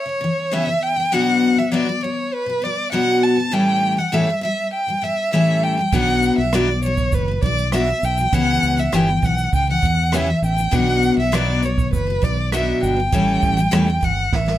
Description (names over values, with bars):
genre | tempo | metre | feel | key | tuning
acoustic pop | 100 BPM | 4/4 | straight | B minor | A4 = 441 Hz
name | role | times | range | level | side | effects
warm violin | melody | 0.0-14.6 s | B4 to A5 | -21 LUFS | equal | slapback echo
picked steel-string acoustic guitar | accompaniment | 0.1-14.6 s | A2 to A4 | -20 LUFS | left 2 dB | none
fingered electric bass | bass | 5.9-14.6 s | F#1 to E2 | -22 LUFS | right 1 dB | none
jazz brush drum kit | drums | 5.9-14.6 s | kick drum, rim click, shaker, snare drum | -24 LUFS | right 3 dB | none
room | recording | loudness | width
little or no reverb | close, detailed microphones | -16 LUFS | side -13 dB against mid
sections
0.0-14.6 A section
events
drum fill 14.3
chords
0.0 C#m7b5; 1.1 Bm; 3.5 A7; 5.9 Bm; 8.3 C#m7b5; 10.7 Bm; 13.1 A7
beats
0.52 | 1.12 1.72 2.32 2.92 | 3.52 4.13 4.73 5.33 | 5.93 6.53 7.13 7.73 | 8.33 8.93 9.53 10.13 | 10.73 11.33 11.93 12.53 | 13.13 13.73 14.33